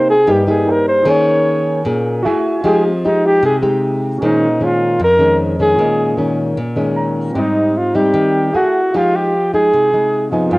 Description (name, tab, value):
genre	bossa nova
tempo	153 BPM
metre	4/4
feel	straight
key	F minor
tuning	A4 = 445 Hz
part	breathy flugelhorn	melody	0.0-10.6 s	C4 to Db5	-14 LUFS	equal	cassette tape
part	nylon-string guitar	accompaniment	0.0-10.6 s	F2 to Ab4	-16 LUFS	left 1 dB	cassette tape
part	warm grand piano	accompaniment	0.0-10.6 s	Bb2 to Bb5	-24 LUFS	right 2 dB	cassette tape
room	moderate spring reverb, RT60 1.3 s, studio ambience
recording	home recording on cassette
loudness	-12 LUFS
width	side -21 dB against mid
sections	0.0-4.2 A section; 4.2-10.6 B section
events	flugelhorn solo 0.0-4.2; grand piano fill 6.8-7.4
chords	0.0 Cm7; 1.1 Eb7sus4; 2.2 Gbm9; 2.6 Fm9; 4.2 Bbm11; 5.8 Eb7sus4/Bb; 7.4 Abmaj7; 8.5 Gbm9; 8.9 Fm9